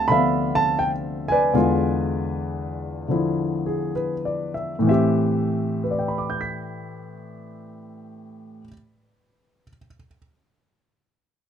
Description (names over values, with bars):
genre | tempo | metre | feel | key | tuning
solo jazz | 62-87 BPM | 4/4 | swing 68% on 8ths, rubato | A minor | A4 = 440 Hz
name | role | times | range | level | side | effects
warm grand piano | solo | 0.0-10.2 s | D2 to B6 | -21 LUFS | equal | none
room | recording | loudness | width
little or no reverb | close, detailed microphones | -20 LUFS | side -8 dB against mid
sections
0.0-4.9 A section; 4.9-8.7 B section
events
slowing down 0.0-4.9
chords
0.0 Dm11; 1.5 E7b9; 4.9 Am7